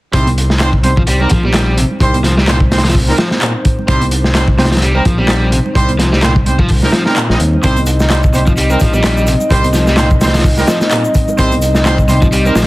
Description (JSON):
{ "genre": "breakbeat, breaks", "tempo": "128 BPM", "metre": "4/4", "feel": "swing 56% on 16ths", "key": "C minor", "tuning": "A4 = 440 Hz", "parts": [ { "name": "dark analog pad", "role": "sustained chords", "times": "0.1-12.7 s", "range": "G3 to Eb5", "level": "-20 LUFS", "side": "left 1 dB", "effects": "chorus, sidechain pumping" }, { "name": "overdriven semi-hollow guitar", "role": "riff", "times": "0.1-12.7 s", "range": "Bb2 to C4", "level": "-18 LUFS", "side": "equal", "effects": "dub echo" }, { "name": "bright brass ensemble", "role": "stabs", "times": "0.1-12.5 s", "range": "G3 to Eb5", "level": "-19 LUFS", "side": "right 2 dB", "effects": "vintage 12-bit sampler grit, dub echo" }, { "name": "fingered electric bass", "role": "bass", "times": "0.1-12.7 s", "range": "Bb1 to Eb2", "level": "-14 LUFS", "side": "equal", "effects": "tube saturation" }, { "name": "crunchy breakbeat drum kit", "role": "drums", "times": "0.1-12.7 s", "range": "hi-hat, kick drum, snare drum", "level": "-14 LUFS", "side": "equal", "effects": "none" }, { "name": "congas and bongos", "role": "percussion", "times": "0.3-12.5 s", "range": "none", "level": "-24 LUFS", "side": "right 4 dB", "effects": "none" }, { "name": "electronic handclaps and shaker", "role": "drums", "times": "0.6-12.7 s", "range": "none", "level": "-21 LUFS", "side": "equal", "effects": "none" } ], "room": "moderate small room reverb, RT60 0.5 s", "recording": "dense, heavily limited modern master, vinyl crackle", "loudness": "-10 LUFS", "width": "side -18 dB against mid", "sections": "0.1-12.7 A section", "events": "none", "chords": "0.1 Cm" }